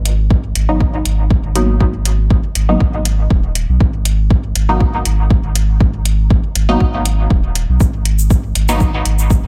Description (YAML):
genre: dub techno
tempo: 120 BPM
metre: 4/4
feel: swing 53% on 16ths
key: G# minor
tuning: A4 = 440 Hz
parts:
  - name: warm sub bass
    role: bass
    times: 0.0-9.5 s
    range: D#1 to B1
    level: -18 LUFS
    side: equal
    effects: sidechain pumping
  - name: electronic hi-hat and shaker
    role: drums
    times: 0.1-9.4 s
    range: none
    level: -24 LUFS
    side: equal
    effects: overdrive
  - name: electronic kick drum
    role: drums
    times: 0.3-9.4 s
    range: none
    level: -16 LUFS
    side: equal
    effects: overdrive
  - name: filtered dub chord stab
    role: stabs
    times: 0.7-8.8 s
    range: F#3 to D#4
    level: -22 LUFS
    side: equal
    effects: chorus, phaser, sidechain pumping, dub echo
room: little or no reverb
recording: none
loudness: -14 LUFS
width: mono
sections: 0.0-9.5 A section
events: none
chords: 0.0 G#m7